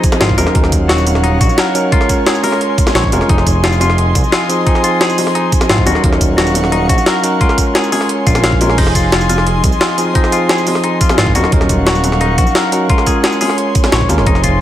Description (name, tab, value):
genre	liquid drum and bass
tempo	175 BPM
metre	4/4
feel	straight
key	F phrygian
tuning	A4 = 440 Hz
part	bell-like tine electric piano	accompaniment	0.0-14.6 s	F3 to Bb4	-17 LUFS	equal	tape echo
part	airy breathy pad	sustained chords	0.0-14.6 s	Ab4 to Db6	-20 LUFS	equal	chorus, sidechain pumping
part	clean electric guitar	arpeggios	0.0-14.6 s	Eb4 to F5	-20 LUFS	left 4 dB	ping-pong delay
part	electronic kick drum	drums	0.0-14.5 s	none	-14 LUFS	equal	overdrive
part	jungle sampler-style drum kit	drums	0.0-14.5 s	crash cymbal, hi-hat, snare drum, tambourine	-17 LUFS	equal	none
part	bongos	percussion	0.1-14.2 s	none	-23 LUFS	left 2 dB	none
part	smooth synth bass	bass	0.2-14.6 s	Eb1 to Eb2	-16 LUFS	equal	none
room	light reverb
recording	none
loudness	-10 LUFS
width	side -12 dB against mid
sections	0.0-14.6 A section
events	none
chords	0.4 Ebm7; 1.9 Bbm7; 3.3 Fm7; 5.9 Ebm7; 7.4 Bbm7; 8.8 Fm7; 11.4 Ebm7; 12.9 Bbm7